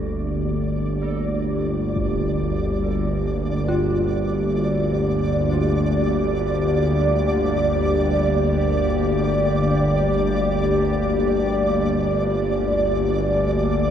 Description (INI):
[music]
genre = dark ambient drone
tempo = free time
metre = none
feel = none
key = G minor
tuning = A4 = 440 Hz
[part]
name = dark analog pad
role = sustained chords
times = 0.0-13.9 s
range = Bb3 to D5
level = -23 LUFS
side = equal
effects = chorus, phaser
[part]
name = dark detuned synth bell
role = arpeggios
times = 0.0-13.9 s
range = C4 to A4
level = -33 LUFS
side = left 2 dB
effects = chorus, phaser, dub echo
[part]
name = bowed-like drone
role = drone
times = 0.0-13.9 s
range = G1 to D2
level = -22 LUFS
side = equal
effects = built-in reverb
[part]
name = flickering grainy texture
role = texture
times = 0.0-13.9 s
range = D5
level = -29 LUFS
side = equal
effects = built-in reverb
[part]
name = impact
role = percussion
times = 2.0-2.2 s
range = none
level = -32 LUFS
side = equal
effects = none
[sound]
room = moderate plate reverb, RT60 2.5 s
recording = echo-heavy mix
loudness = -19 LUFS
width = side -9 dB against mid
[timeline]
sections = 0.0-13.9 A section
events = fade-in on synth texture 0.0-13.9; filter sweep on synth drone 0.0-13.9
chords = 0.0 Gm